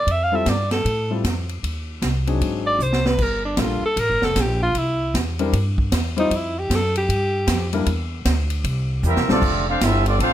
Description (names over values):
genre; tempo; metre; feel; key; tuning
jazz, big band swing; 154 BPM; 4/4; swing 64% on 8ths; unclear; A4 = 440 Hz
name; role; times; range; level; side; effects
breathy alto saxophone; melody; 0.0-7.8 s; D4 to F5; -22 LUFS; equal; none
upright bass; bass; 0.0-10.3 s; F1 to A2; -22 LUFS; equal; none
swinging big-band drum kit; drums; 0.1-10.3 s; crash cymbal, hi-hat, kick drum, ride cymbal, snare drum; -25 LUFS; right 1 dB; none
warm grand piano; accompaniment; 0.3-9.4 s; Gb3 to C5; -25 LUFS; left 5 dB; none
clear trombone section; second line; 9.0-10.3 s; D3 to F4; -26 LUFS; right 2 dB; none
warm trumpet section; melody; 9.1-10.3 s; C4 to F5; -21 LUFS; right 1 dB; none
room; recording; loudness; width
light reverb; close, detailed microphones; -18 LUFS; side -12 dB against mid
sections
0.0-9.4 A section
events
alto saxophone solo 0.0-9.4; drum fill 2.8-3.2, 9.0-9.4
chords
0.1 Fmaj7; 1.6 Cdim; 2.4 G#7#11; 3.2 Gm9; 4.8 C; 6.3 Fsus2; 7.9 Dsus2; 8.6 C7; 9.4 F6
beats
| 0.08 0.47 0.86 1.25 | 1.64 2.03 2.42 2.81 | 3.19 3.58 3.97 4.36 | 4.75 5.14 5.53 5.92 | 6.31 6.70 7.08 7.47 | 7.86 8.25 8.64 9.03 | 9.42 9.80 10.19